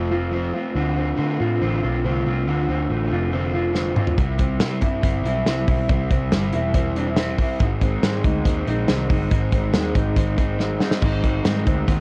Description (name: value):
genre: jangly indie pop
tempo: 140 BPM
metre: 4/4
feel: straight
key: unclear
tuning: A4 = 440 Hz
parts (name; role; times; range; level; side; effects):
- crunchy overdriven guitar; accompaniment; 0.0-12.0 s; Ab2 to F4; -29 LUFS; equal; none
- electric guitar through a small old amp; arpeggios; 0.0-12.0 s; Ab2 to F4; -28 LUFS; equal; harmonic tremolo
- vintage muted picked electric bass; bass; 0.0-12.0 s; E1 to D3; -27 LUFS; equal; none
- loose indie drum kit; drums; 3.7-12.0 s; crash cymbal, hi-hat, kick drum, snare drum, toms; -24 LUFS; equal; none
room: moderate small room reverb, RT60 0.6 s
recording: worn, warbling old tape, cassette tape, warbly pitch drift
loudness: -21 LUFS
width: mono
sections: 0.0-11.0 A section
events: drum fill 3.8-4.2, 10.6-11.0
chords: 0.0 F; 0.8 Dm7; 4.2 C; 7.6 Ab